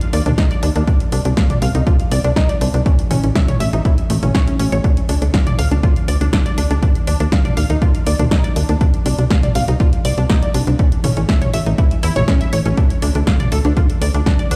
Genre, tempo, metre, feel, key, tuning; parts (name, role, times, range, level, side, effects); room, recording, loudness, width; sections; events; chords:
melodic techno; 121 BPM; 4/4; straight; A4 = 440 Hz
punchy analog drum machine; drums; 0.0-14.6 s; hi-hat, snare drum, toms; -25 LUFS; equal
tight sequenced synth; arpeggios; 0.1-14.6 s; A3 to F5; -26 LUFS; equal; chorus, phaser, sidechain pumping, dub echo
tight sequencer bass; bass; 0.1-14.6 s; A1 to E2; -18 LUFS; equal; sidechain pumping
electronic kick drum; drums; 0.4-14.4 s; -18 LUFS; equal
little or no reverb; played on a big sound system in a bare room, large studio reverb; -16 LUFS; mono
0.0-14.6 A section
0.0 N.C.; 2.9 A5; 4.8 Dm; 6.8 Ebsus2; 8.8 N.C.; 10.8 A5; 12.8 N.C.